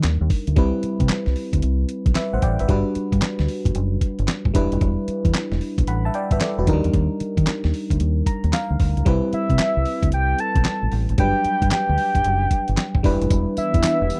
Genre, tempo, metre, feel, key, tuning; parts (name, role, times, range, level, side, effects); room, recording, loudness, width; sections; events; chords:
R&B, new jack swing; 113 BPM; 4/4; swing 65% on 16ths; A4 = 440 Hz
FM electric piano; accompaniment; 0.0-14.2 s; F3 to B5; -27 LUFS; equal; chorus
deep dub fingered electric bass; bass; 0.0-14.1 s; E1 to Eb3; -24 LUFS; equal
dusty soul sampler-style drum kit; drums; 0.0-14.2 s; handclaps, hi-hat, kick drum, snare drum, tambourine; -24 LUFS; equal
soft octave-layered synth lead; melody; 9.3-14.2 s; E5 to A5; -25 LUFS; equal; chorus
sweeping resonant pad; sustained chords; 13.6-14.2 s; E3 to G4; -28 LUFS; equal; lush chorus
little or no reverb; dry, close 1970s-style studio recording; -21 LUFS; mono
0.0-9.1 A section; 9.1-14.2 B section
FM electric piano fill 8.0-9.1
0.0 Ebmaj7; 0.6 Cmaj7; 2.7 Gmaj7; 4.5 Em7; 6.7 Ebmaj7; 9.1 Cmaj7; 11.2 Gmaj7; 13.0 Em7